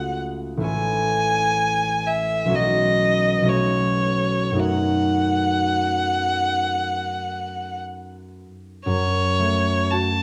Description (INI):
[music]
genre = classical, impressionist duo for violin and harp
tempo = 52-65 BPM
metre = 4/4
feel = rubato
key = F# minor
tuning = A4 = 440 Hz
[part]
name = rich violin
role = melody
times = 0.0-10.2 s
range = C#5 to A5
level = -24 LUFS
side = equal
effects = none
[part]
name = concert harp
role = accompaniment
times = 0.0-10.2 s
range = A1 to C#5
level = -25 LUFS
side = equal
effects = none
[sound]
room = moderate recital hall reverb, RT60 1.2 s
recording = none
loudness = -21 LUFS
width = mono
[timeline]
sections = 0.0-8.9 A section; 8.9-10.2 A section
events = none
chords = 0.0 F#madd9/C#; 0.7 Amaj7; 2.5 B9; 4.6 F#m6; 8.9 F#m